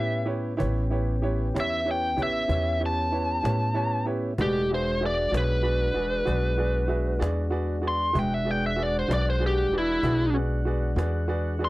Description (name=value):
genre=slow blues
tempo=64 BPM (dotted quarters)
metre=12/8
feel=straight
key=unclear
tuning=A4 = 440 Hz
part: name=biting lead guitar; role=melody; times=0.0-11.7 s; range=E4 to C6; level=-26 LUFS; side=equal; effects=overdrive
part: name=bright upright piano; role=accompaniment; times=0.0-11.7 s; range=E4 to A5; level=-32 LUFS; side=right 3 dB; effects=none
part: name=tonewheel organ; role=sustained chords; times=0.0-11.7 s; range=G#3 to F#5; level=-34 LUFS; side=left 1 dB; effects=slow rotary speaker
part: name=upright bass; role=bass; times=0.0-11.7 s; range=E1 to A2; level=-27 LUFS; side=equal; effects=none
part: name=cajon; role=drums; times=0.3-11.7 s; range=none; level=-34 LUFS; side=equal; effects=none
room=little or no reverb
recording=dry, close 1970s-style studio recording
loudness=-23 LUFS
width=side -19 dB against mid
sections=0.0-11.7 A section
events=lead electric guitar solo 0.0-11.7; upright piano fill 3.4-4.4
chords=0.0 A7; 4.4 E7